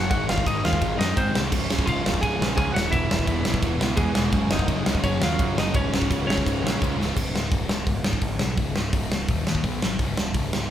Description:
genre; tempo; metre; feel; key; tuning
punk rock; 170 BPM; 4/4; straight; unclear; A4 = 440 Hz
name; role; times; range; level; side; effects
lightly driven lead guitar; melody; 0.0-6.9 s; G#3 to Ab5; -27 LUFS; left 1 dB; none
distorted electric guitar; riff; 0.0-7.2 s; Db2 to Ab3; -30 LUFS; right 6 dB; distortion
sludgy distorted guitar; riff; 0.0-10.7 s; Db2 to Cb4; -30 LUFS; left 7 dB; overdrive
growling picked electric bass; bass; 0.0-10.7 s; Db1 to Ab2; -29 LUFS; equal; overdrive
big rock drum kit; drums; 0.1-10.6 s; crash cymbal, hi-hat, kick drum, ride cymbal, snare drum; -24 LUFS; right 1 dB; none
room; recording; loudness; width
light reverb; band playing live in one room; -21 LUFS; side -10 dB against mid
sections
0.0-7.2 A section; 7.2-10.7 B section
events
drum fill 7.0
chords
0.1 Ab; 1.5 Db; 2.9 E; 4.3 Gb5; 5.7 Db5; 9.3 Eb5; 9.6 Cb5; 10.0 Db5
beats
| 0.11 0.46 0.81 1.17 | 1.52 1.87 2.22 2.58 | 2.93 3.28 3.63 3.99 | 4.34 4.69 5.04 5.40 | 5.75 6.10 6.45 6.81 | 7.16 7.51 7.87 8.22 | 8.57 8.93 9.28 9.64 | 9.99 10.35

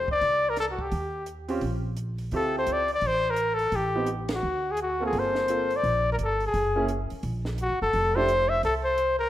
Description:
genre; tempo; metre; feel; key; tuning
jazz, small-group swing and bop; 171 BPM; 4/4; swing 62% on 8ths; F major; A4 = 440 Hz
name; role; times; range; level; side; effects
clear trumpet; melody; 0.0-9.3 s; Gb4 to E5; -24 LUFS; left 1 dB; none
upright bass; bass; 0.0-9.3 s; F1 to Eb2; -32 LUFS; right 1 dB; none
compact cocktail drum kit; drums; 0.1-9.1 s; hi-hat, kick drum, ride cymbal, snare drum; -38 LUFS; right 1 dB; none
clear upright piano; accompaniment; 1.5-8.3 s; A3 to A4; -31 LUFS; right 2 dB; none
room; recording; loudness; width
moderate digital room reverb, RT60 1.2 s; rough home demo mix; -24 LUFS; side -13 dB against mid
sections
0.0-9.3 A section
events
band accent 4.3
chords
0.0 F5; 0.9 Eb; 2.3 Dm11; 3.7 Am7b5; 4.4 Dm7; 5.1 Gm11; 6.5 Gbadd9; 7.9 F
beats
0.21 0.57 | 0.92 1.27 1.62 1.97 | 2.33 2.68 3.03 3.38 | 3.73 4.08 4.43 4.78 | 5.13 5.48 5.83 6.19 | 6.54 6.89 7.24 7.59 | 7.94 8.29 8.64 8.99

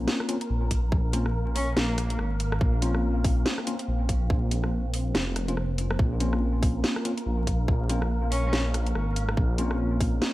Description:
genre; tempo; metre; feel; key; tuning
deep dubstep; 142 BPM; 4/4; swing 59% on 16ths, half-time; Bb minor; A4 = 440 Hz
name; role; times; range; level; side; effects
mellow tine electric piano; stabs; 0.0-10.3 s; Bb3 to F4; -32 LUFS; left 2 dB; wide subtle chorus, dub echo
dark detuned saw bass; bass; 0.0-10.2 s; F1 to Bb1; -26 LUFS; equal; none
wind-like tuned noise texture; texture; 0.0-10.3 s; Bb3 to Bb4; -35 LUFS; right 1 dB; built-in reverb
garage drum kit; drums; 0.1-10.3 s; hi-hat, rim click, snare drum; -30 LUFS; equal; none
electronic kick drum; drums; 0.7-10.1 s; none; -25 LUFS; equal; none
warm cello; melody; 1.6-2.1, 8.3-8.5 s; Bb3 to Db4; -34 LUFS; left 1 dB; dub echo
room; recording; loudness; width
light reverb; vinyl crackle; -24 LUFS; side -17 dB against mid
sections
0.0-10.3 A section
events
none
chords
0.0 Bbmadd9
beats
0.08 0.50 | 0.92 1.34 1.77 2.19 | 2.61 3.04 3.46 3.88 | 4.30 4.72 5.15 5.57 | 5.99 6.42 6.84 7.26 | 7.68 8.11 8.53 8.95 | 9.37 9.80 10.22

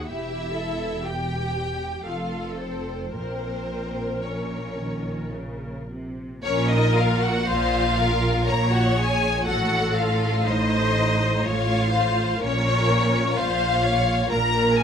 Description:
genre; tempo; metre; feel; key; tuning
classical, slow romantic movement for string orchestra; 53-65 BPM; 3/4; rubato; Bb minor; A4 = 440 Hz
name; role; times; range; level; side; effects
warm symphonic violin section; melody; 0.0-14.8 s; C5 to Bb5; -26 LUFS; left 3 dB; none
rich symphonic violin section; second line; 0.0-14.8 s; C4 to Bb4; -30 LUFS; equal; none
rich symphonic viola section; accompaniment; 0.0-14.8 s; G4 to Db5; -28 LUFS; left 1 dB; none
rich symphonic cello section; bass; 0.0-14.8 s; E2 to Eb3; -28 LUFS; right 1 dB; none
warm chamber double bass section; bass; 0.0-14.8 s; E1 to Bb1; -27 LUFS; right 1 dB; none
room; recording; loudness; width
moderate stone room reverb, RT60 1.1 s; none; -21 LUFS; side -8 dB against mid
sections
0.0-6.4 A section; 6.4-14.8 A section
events
none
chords
0.1 Emadd11; 2.1 F; 3.1 Bbm; 9.5 F7/A; 12.4 Bbm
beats
| 0.07 1.05 2.07 | 3.14 4.25 5.34 | 6.45 7.47 8.47 | 9.46 10.46 11.44 | 12.43 13.37 14.31

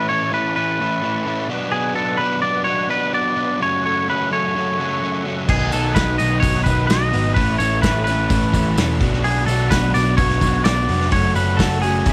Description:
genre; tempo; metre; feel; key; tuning
indie rock; 128 BPM; 4/4; straight; unclear; A4 = 439 Hz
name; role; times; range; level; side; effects
twangy electric guitar; melody; 0.0-12.1 s; G#4 to D#5; -23 LUFS; equal; cassette tape
percussive tonewheel organ; sustained chords; 0.0-12.1 s; G#4 to D#6; -35 LUFS; equal; slow rotary speaker, chorus vibrato, cassette tape
overdriven semi-hollow guitar; riff; 0.0-12.1 s; F#2 to F#4; -26 LUFS; equal; cassette tape
raw garage guitar; riff; 5.5-12.1 s; A2 to F#4; -27 LUFS; equal; overdrive, subtle chorus, cassette tape
picked electric bass; bass; 5.5-12.1 s; E1 to B1; -23 LUFS; equal; none
loose indie drum kit; drums; 5.5-12.1 s; crash cymbal, hi-hat, kick drum, snare drum; -24 LUFS; equal; none
tambourine; percussion; 5.7-12.1 s; none; -39 LUFS; equal; none
room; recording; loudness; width
light reverb; home recording on cassette; -19 LUFS; mono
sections
0.0-12.1 A section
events
none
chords
0.0 Aadd9; 1.5 Bm; 3.6 F#m; 5.5 B; 7.4 Aadd9; 9.0 Bm; 11.1 F#m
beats
0.32 0.79 1.26 | 1.73 2.20 2.67 3.14 | 3.61 4.08 4.54 5.01 | 5.48 5.95 6.42 6.89 | 7.36 7.83 8.30 8.77 | 9.24 9.71 10.18 10.65 | 11.12 11.59 12.06

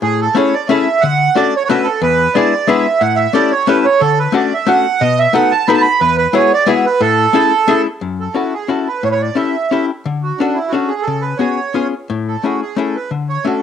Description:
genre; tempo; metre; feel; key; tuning
musette waltz; 179 BPM; 3/4; swing 53% on 8ths; A major, F# minor from 8.0 s; A4 = 440 Hz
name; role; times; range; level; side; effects
accordion; melody; 0.0-13.6 s; D4 to B5; -14 LUFS; right 6 dB; cassette tape
archtop guitar, miked and amplified; accompaniment; 0.0-13.6 s; E2 to A4; -16 LUFS; left 6 dB; none
room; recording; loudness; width
moderate spring reverb, RT60 1.0 s, studio reverb; home recording on cassette; -12 LUFS; side -8 dB against mid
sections
0.0-8.0 A section; 8.0-13.6 B section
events
none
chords
0.0 Amaj7; 1.0 Dmaj7; 2.0 E7; 3.0 A7; 4.0 Dmaj7; 5.0 B7; 6.0 Eadd9; 7.0 Amaj7; 8.0 F#m7; 9.0 A7; 10.1 Dmaj7; 11.1 C#7sus4; 11.8 C#7; 12.1 Amaj7; 13.1 Dmaj7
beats
| 0.01 0.35 0.69 | 1.02 1.35 1.68 | 2.01 2.35 2.68 | 3.01 3.34 3.68 | 4.01 4.34 4.68 | 5.01 5.34 5.68 | 6.01 6.34 6.67 | 7.00 7.34 7.67 | 8.02 8.36 8.70 | 9.03 9.37 9.71 | 10.05 10.39 10.73 | 11.07 11.41 11.75 | 12.09 12.44 12.78 | 13.12 13.46

